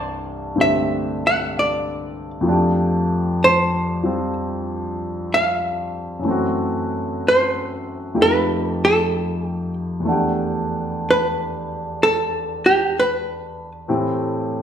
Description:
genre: jazz ballad.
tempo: 63 BPM.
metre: 4/4.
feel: swing 67% on 8ths.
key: unclear.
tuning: A4 = 442 Hz.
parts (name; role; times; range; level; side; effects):
archtop guitar, miked and amplified; melody; 0.0-13.7 s; G4 to F#5; -18 LUFS; right 1 dB; none.
warm grand piano; accompaniment; 0.0-14.6 s; C2 to F#5; -22 LUFS; equal; none.
room: wet large studio reverb, RT60 1.2 s.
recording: none.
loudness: -18 LUFS.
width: side -8 dB against mid.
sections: 0.0-14.6 A section.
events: none.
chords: 0.0 C13; 2.5 F69; 6.2 F#m7b5; 8.2 F9; 10.1 Em11; 13.9 Am7.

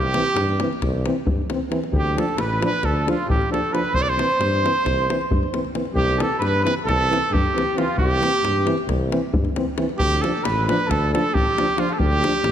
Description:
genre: balkan folk, Balkan brass band.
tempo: 268 BPM (eighths).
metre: 9/8.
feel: straight.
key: C major.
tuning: A4 = 438 Hz.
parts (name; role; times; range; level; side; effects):
clear trumpet; melody; 0.0-12.5 s; F4 to D5; -23 LUFS; right 3 dB; none.
warm flugelhorn; second line; 0.0-12.5 s; F4 to D5; -26 LUFS; left 1 dB; none.
mellow tuba; bass; 0.0-12.5 s; A1 to G2; -25 LUFS; equal; none.
davul; percussion; 0.0-12.5 s; none; -25 LUFS; left 2 dB; none.
mellow French horn; accompaniment; 0.1-12.3 s; C4 to D4; -29 LUFS; left 5 dB; none.
mellow euphonium; accompaniment; 0.1-12.3 s; E3 to F3; -29 LUFS; right 4 dB; none.
room: moderate concert hall reverb, RT60 2.3 s.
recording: none.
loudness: -18 LUFS.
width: side -9 dB against mid.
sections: 0.0-6.0 A section; 6.0-12.5 A section.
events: none.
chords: 0.0 C; 1.9 Dm; 3.9 C; 10.0 Dm.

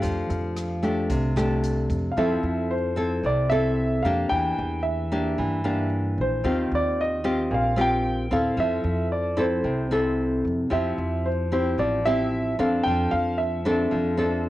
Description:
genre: bossa nova.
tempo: 112 BPM.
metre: 4/4.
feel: straight.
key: F major.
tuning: A4 = 437 Hz.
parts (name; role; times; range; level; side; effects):
warm concert grand piano; melody; 0.0-14.4 s; C5 to G5; -27 LUFS; right 1 dB; cassette tape.
nylon-string guitar; accompaniment; 0.0-14.5 s; Bb2 to A4; -24 LUFS; left 1 dB; cassette tape, plate reverb.
upright bass; bass; 0.0-14.5 s; A1 to G2; -29 LUFS; equal; none.
swinging big-band drum kit; drums; 0.0-2.0 s; hi-hat, kick drum, rim click; -35 LUFS; equal; cassette tape.
room: light reverb.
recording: home recording on cassette.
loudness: -22 LUFS.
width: side -15 dB against mid.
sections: 0.0-2.2 A section; 2.2-14.5 A section.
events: none.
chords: 0.0 F69; 2.2 Fmaj7; 4.3 C9 (rootless); 6.4 Eb69; 8.6 Fmaj7; 10.7 Dm11/F (rootless); 12.8 Fmaj13.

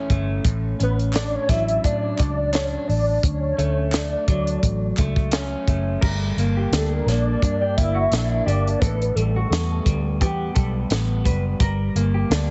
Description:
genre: indie pop, bedroom pop.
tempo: 86 BPM.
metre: 4/4.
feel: swing 55% on 16ths.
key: D major.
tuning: A4 = 440 Hz.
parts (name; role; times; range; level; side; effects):
warm velvety synth lead; melody; 0.0-10.6 s; A4 to E5; -28 LUFS; equal; tremolo, ensemble chorus, digital delay.
electric guitar through a small old amp; accompaniment; 0.0-12.5 s; A2 to D4; -30 LUFS; equal; subtle chorus, warbly pitch drift.
vintage muted fingered electric bass; bass; 0.0-12.5 s; F#1 to A2; -25 LUFS; equal; none.
compact cocktail drum kit; drums; 0.1-12.5 s; crash cymbal, hi-hat, kick drum, snare drum; -25 LUFS; equal; none.
group handclap; percussion; 1.1-5.5 s; none; -39 LUFS; equal; none.
mellow electric guitar; second line; 6.0-12.5 s; F#4 to B4; -35 LUFS; equal; subtle chorus, digital delay.
room: light reverb, studio ambience.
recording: heavily compressed radio sound, nothing above 7.9 kHz.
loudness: -22 LUFS.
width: mono.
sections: 0.0-6.0 A section; 6.0-12.5 B section.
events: none.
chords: 0.5 Dmaj7/A; 3.2 Dmaj7; 6.0 Gm; 8.8 A9sus4; 11.6 Gm.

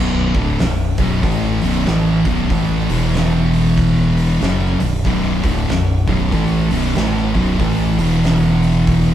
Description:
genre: stoner and doom metal.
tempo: 94 BPM.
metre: 4/4.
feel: swing 61% on 8ths.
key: B minor.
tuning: A4 = 436 Hz.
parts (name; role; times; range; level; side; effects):
thick fuzz guitar; riff; 0.0-9.1 s; B1 to A3; -18 LUFS; left 4 dB; distortion.
thick fuzz guitar; riff; 0.0-9.1 s; B1 to A3; -20 LUFS; right 6 dB; distortion.
thick fuzz guitar; riff; 0.0-9.1 s; B1 to A3; -25 LUFS; right 1 dB; distortion.
growling fingered electric bass; bass; 0.0-9.1 s; B0 to A1; -21 LUFS; equal; overdrive.
oversized low-tuned drum kit; drums; 0.3-9.1 s; hi-hat, kick drum, snare drum; -22 LUFS; equal; none.
room: light reverb.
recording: band playing live in one room.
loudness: -14 LUFS.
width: side -11 dB against mid.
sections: 0.0-9.1 A section.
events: none.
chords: 0.0 Bm; 2.8 E5; 4.4 Bm; 7.9 E5.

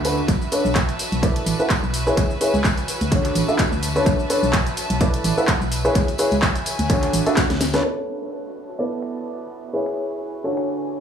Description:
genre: piano house.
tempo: 127 BPM.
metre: 4/4.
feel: swing 55% on 16ths.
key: B dorian.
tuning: A4 = 439 Hz.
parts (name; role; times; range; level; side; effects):
clear upright piano; riff; 0.0-11.0 s; B3 to F#5; -23 LUFS; equal; sidechain pumping, low-pass filter, dub echo.
organ-like FM bass; bass; 0.0-7.8 s; A1 to D2; -23 LUFS; right 1 dB; sidechain pumping.
house drum kit; drums; 0.0-11.0 s; finger snaps, handclaps, hi-hat, shaker, snare drum; -26 LUFS; equal; overdrive, dub echo.
tambourine; percussion; 0.0-7.8 s; none; -34 LUFS; left 5 dB; dub echo.
clear studio string section; texture; 0.0-11.0 s; D3 to A5; -31 LUFS; right 1 dB; sidechain pumping.
electronic kick drum; drums; 0.3-7.5 s; none; -22 LUFS; equal; overdrive.
downlifter; sound effects; 7.8-11.0 s; none; -47 LUFS; right 1 dB; none.
room: light reverb, digital ambience.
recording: echo-heavy mix, low-pass filter, studio reverb.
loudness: -18 LUFS.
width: side -8 dB against mid.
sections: 0.0-7.8 A section; 7.8-11.0 B section.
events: drum fill 7.4-7.8; filter sweep 7.8-11.0.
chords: 0.3 Bm9; 1.2 E7sus4; 2.2 C#m7; 2.9 Dmaj7; 4.1 Bm9; 5.0 E7sus4; 6.0 C#m7; 6.7 Dmaj7; 7.8 Bm9; 8.8 E7sus4/B; 9.7 C#m7; 10.4 Dmaj7.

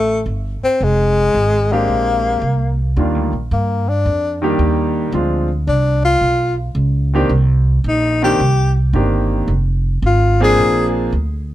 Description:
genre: jazz, small-group swing and bop.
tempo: 110 BPM.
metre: 4/4.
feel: swing 69% on 8ths.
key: Eb major.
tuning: A4 = 440 Hz.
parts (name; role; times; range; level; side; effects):
breathy tenor saxophone; melody; 0.0-10.9 s; Ab3 to Ab4; -16 LUFS; left 2 dB; plate reverb.
upright bass; bass; 0.0-11.5 s; F1 to G2; -17 LUFS; right 1 dB; none.
warm concert grand piano; accompaniment; 1.7-11.1 s; Eb3 to Ab4; -18 LUFS; right 1 dB; none.
room: light reverb.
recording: none.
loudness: -14 LUFS.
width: side -14 dB against mid.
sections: 0.0-3.0 A section; 3.0-11.5 B section.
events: tenor saxophone solo 3.0-11.5.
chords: 0.0 N.C.; 0.8 Fm; 1.9 Bb13; 3.0 Ebmaj7; 5.1 Dm7b5; 6.2 G; 7.3 Cm9; 9.5 Fm; 10.6 Bb7.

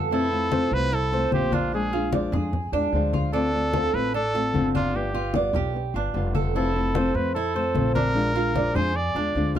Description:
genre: latin, Cuban son and guajira.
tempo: 149 BPM.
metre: 4/4.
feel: straight.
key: unclear.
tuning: A4 = 440 Hz.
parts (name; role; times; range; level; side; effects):
nylon-string guitar; accompaniment; 0.0-9.6 s; C3 to F4; -27 LUFS; left 3 dB; none.
Cuban tres; arpeggios; 0.0-9.6 s; D4 to D5; -28 LUFS; right 4 dB; none.
upright bass; bass; 0.0-9.6 s; F1 to F2; -28 LUFS; equal; none.
clear trumpet; melody; 0.1-9.6 s; F4 to D5; -27 LUFS; right 1 dB; none.
congas; percussion; 0.1-9.6 s; none; -28 LUFS; left 3 dB; none.
room: light reverb.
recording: none.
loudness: -21 LUFS.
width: side -10 dB against mid.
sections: 0.0-9.6 A section.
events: none.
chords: 0.1 Fmaj7; 1.7 Bb7; 3.3 Dm7; 4.9 G7; 6.5 Fmaj7; 8.2 Bb7.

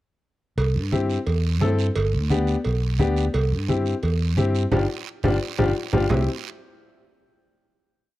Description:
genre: latin, cumbia.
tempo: 174 BPM.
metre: 4/4.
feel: straight.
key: C major.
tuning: A4 = 440 Hz.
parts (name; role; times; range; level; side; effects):
fingered electric bass; bass; 0.6-6.3 s; G1 to G2; -22 LUFS; equal; none.
congas; percussion; 0.6-6.2 s; none; -26 LUFS; right 2 dB; none.
cowbell and timbales; percussion; 0.6-6.2 s; none; -30 LUFS; right 4 dB; none.
guiro; percussion; 0.6-6.2 s; none; -38 LUFS; right 12 dB; none.
warm upright piano; accompaniment; 0.9-6.3 s; B3 to A4; -24 LUFS; left 4 dB; none.
room: small room ambience.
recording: dry, close 1970s-style studio recording.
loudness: -20 LUFS.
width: side -16 dB against mid.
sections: 0.6-6.1 groove; 6.1-7.5 final chord.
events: drum fill 4.7-6.1; band accent 4.7-6.1.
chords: 0.6 C; 2.0 G; 3.3 C; 4.7 G5; 6.1 C.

